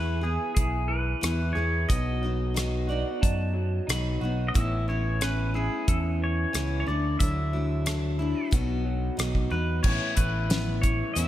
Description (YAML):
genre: folk rock and heartland rock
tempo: 91 BPM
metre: 4/4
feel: straight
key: unclear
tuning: A4 = 440 Hz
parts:
  - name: pedal steel guitar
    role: melody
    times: 0.0-11.3 s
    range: G#4 to E5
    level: -32 LUFS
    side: equal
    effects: slapback echo
  - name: picked steel-string acoustic guitar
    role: accompaniment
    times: 0.0-11.3 s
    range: A2 to G#4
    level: -34 LUFS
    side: left 4 dB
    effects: slapback echo
  - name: electric guitar through a small old amp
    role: riff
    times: 0.0-11.3 s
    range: E2 to G#4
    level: -34 LUFS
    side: right 1 dB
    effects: slapback echo
  - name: picked electric bass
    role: bass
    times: 0.0-11.3 s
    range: A1 to F#2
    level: -28 LUFS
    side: equal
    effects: none
  - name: damped 70s drum kit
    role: drums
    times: 0.6-11.3 s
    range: crash cymbal, hi-hat, kick drum, rim click, snare drum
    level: -27 LUFS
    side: equal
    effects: none
  - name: clean lap steel guitar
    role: second line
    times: 2.9-4.4 s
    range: D5 to B5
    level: -36 LUFS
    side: right 4 dB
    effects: slapback echo
room: light reverb, small room ambience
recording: none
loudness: -24 LUFS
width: side -13 dB against mid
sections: 0.0-9.8 A section; 9.8-11.3 B section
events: none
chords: 0.0 E; 1.9 B; 4.5 Aadd9; 6.9 Dadd9; 8.5 B; 9.8 Aadd9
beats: 0.56 1.23 | 1.90 2.56 3.22 3.88 | 4.55 5.21 5.87 6.53 | 7.20 7.86 8.52 9.18 | 9.84 10.50 11.16